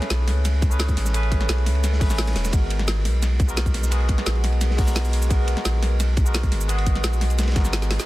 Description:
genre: liquid drum and bass.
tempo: 173 BPM.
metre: 4/4.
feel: straight.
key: unclear.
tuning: A4 = 439 Hz.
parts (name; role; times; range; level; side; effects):
barky tine electric piano; accompaniment; 0.0-8.1 s; G#3 to B4; -29 LUFS; equal; phaser, tape echo.
drum and bass drum kit; drums; 0.0-8.1 s; hi-hat, ride cymbal, shaker, snare drum; -28 LUFS; equal; none.
warm sub bass; bass; 0.1-8.0 s; E1 to C#2; -21 LUFS; equal; none.
crunchy breakbeat drum kit; drums; 0.1-8.1 s; hi-hat, ride cymbal, snare drum; -34 LUFS; equal; high-pass filter on cymbals, high-pass filter on hats, high-pass filter on snare, high-pass filter on room.
electronic kick drum; drums; 0.6-7.6 s; none; -21 LUFS; equal; none.
room: small room ambience.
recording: dense, heavily limited modern master.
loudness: -19 LUFS.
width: side -17 dB against mid.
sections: 0.0-8.1 A section.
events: drum fill 7.8.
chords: 0.0 Amaj9; 2.5 G#m9.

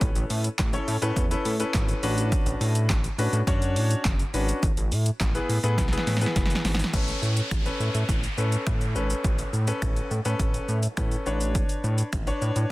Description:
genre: dance-pop.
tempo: 104 BPM.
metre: 4/4.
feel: straight.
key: A major.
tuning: A4 = 440 Hz.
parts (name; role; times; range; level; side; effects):
clear concert grand piano; accompaniment; 0.0-12.7 s; B3 to C#5; -30 LUFS; left 2 dB; sidechain pumping.
chorused synth bass; bass; 0.0-12.7 s; F#1 to A2; -26 LUFS; equal; sidechain pumping.
punchy analog drum machine; drums; 0.0-12.7 s; crash cymbal, finger snaps, handclaps, hi-hat, kick drum, shaker, snare drum; -26 LUFS; equal; overdrive, soft clipping on snare.
downlifter; sound effects; 6.9-11.6 s; none; -36 LUFS; equal; none.
room: little or no reverb.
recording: dense, heavily limited modern master.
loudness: -23 LUFS.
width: side -19 dB against mid.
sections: 0.0-6.9 A section; 6.9-12.7 B section.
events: drum fill 5.8-6.9.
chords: 0.0 Aadd9; 2.0 Bmadd9/A; 4.6 E/A; 6.9 Aadd9; 11.3 Bmadd9/A.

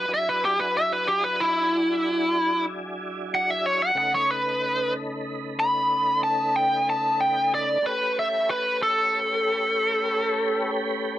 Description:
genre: blues.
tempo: 62 BPM (dotted quarters).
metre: 12/8.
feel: straight.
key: unclear.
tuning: A4 = 441 Hz.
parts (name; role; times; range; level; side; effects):
biting lead guitar; melody; 0.0-10.7 s; E4 to B5; -21 LUFS; equal; overdrive.
tonewheel organ; sustained chords; 0.0-11.2 s; C#3 to B4; -30 LUFS; equal; chorus vibrato, slow rotary speaker.
room: light reverb.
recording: none.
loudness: -21 LUFS.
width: side -13 dB against mid.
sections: 0.0-11.2 A section.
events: lead electric guitar solo 0.0-11.2.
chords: 0.0 E9; 4.0 B9; 7.8 A9.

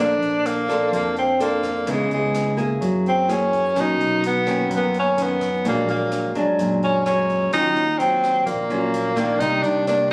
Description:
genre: bossa nova.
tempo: 127 BPM.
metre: 4/4.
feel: straight.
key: unclear.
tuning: A4 = 439 Hz.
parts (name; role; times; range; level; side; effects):
warm tenor saxophone; melody; 0.0-10.1 s; Ab3 to Eb4; -22 LUFS; equal; none.
nylon-string guitar; accompaniment; 0.0-10.1 s; F#2 to C5; -26 LUFS; equal; none.
fingered electric bass; bass; 0.0-10.1 s; Bb1 to Gb2; -31 LUFS; equal; none.
open jazz drum kit; drums; 0.2-10.1 s; hi-hat, kick drum, rim click; -40 LUFS; equal; none.
room: light reverb.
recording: recorded on a phone in the room, studio reverb.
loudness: -21 LUFS.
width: mono.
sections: 0.0-10.1 A section.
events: none.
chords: 0.0 Bbmaj9; 1.9 Dbm9; 2.8 Gb9; 3.8 Bmaj9; 5.6 Bb7alt; 7.5 Ebm9; 9.4 Cm9.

